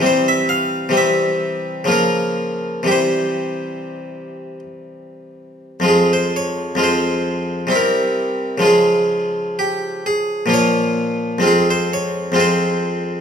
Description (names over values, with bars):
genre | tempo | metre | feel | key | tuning
classical, baroque-style suite movement for harpsichord | 59-66 BPM | 3/4 | rubato | F minor | A4 = 440 Hz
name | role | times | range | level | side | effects
harpsichord | solo | 0.0-13.2 s | F2 to F5 | -16 LUFS | equal | none
room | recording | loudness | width
wet recital hall reverb, RT60 1.3 s | minimal, uncompressed stereo recording | -15 LUFS | side -7 dB against mid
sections
0.0-13.2 A section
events
none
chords
0.0 C; 1.9 Bbm/Db; 2.9 C; 5.8 Fm; 7.7 C7; 8.6 Db; 10.5 Bbm; 11.4 Fm